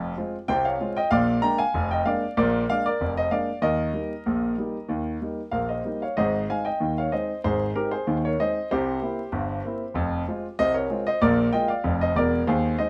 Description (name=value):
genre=ragtime piano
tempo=95 BPM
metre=2/4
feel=straight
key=unclear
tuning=A4 = 442 Hz
part: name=warm grand piano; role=solo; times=0.0-12.9 s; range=Fb1 to Bb5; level=-25 LUFS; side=equal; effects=none
room=moderate studio ambience, RT60 0.5 s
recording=vinyl crackle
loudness=-25 LUFS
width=mono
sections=0.0-12.9 A section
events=none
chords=0.0 Fm; 1.1 Bb7; 3.6 Eb; 6.2 Ab; 8.7 C7; 10.0 Fm; 11.2 Bb7